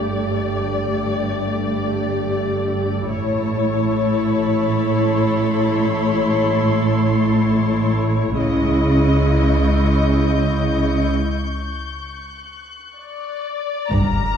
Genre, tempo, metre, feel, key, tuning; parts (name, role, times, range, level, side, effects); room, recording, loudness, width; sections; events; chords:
cinematic, suspense film score; free time; A4 = 440 Hz
muted chamber violin section; melody; 0.0-14.4 s; C#5 to Bb5; -24 LUFS; left 5 dB
muted chamber viola section; accompaniment; 0.0-11.1 s; G#3 to G4; -21 LUFS; equal
muted chamber double bass section; bass; 0.0-14.4 s; G1 to C#2; -23 LUFS; right 2 dB
muted symphonic cello section; bass; 0.0-14.4 s; G2 to C#3; -23 LUFS; right 1 dB
muted chamber violin section; texture; 3.1-14.4 s; A5 to G6; -31 LUFS; left 3 dB
muted chamber cello section; riff; 13.9-14.2 s; G2; -23 LUFS; left 1 dB
impact; sound effects; 13.9-14.4 s; -22 LUFS; left 1 dB
wet scoring stage reverb, RT60 1.9 s; heard from further back in the room; -16 LUFS; side -8 dB against mid
0.0-13.9 A section
break 11.1-13.9; impact 13.9-14.4
0.0 Gsus2; 3.1 A; 8.4 C#madd9; 11.1 Dsus4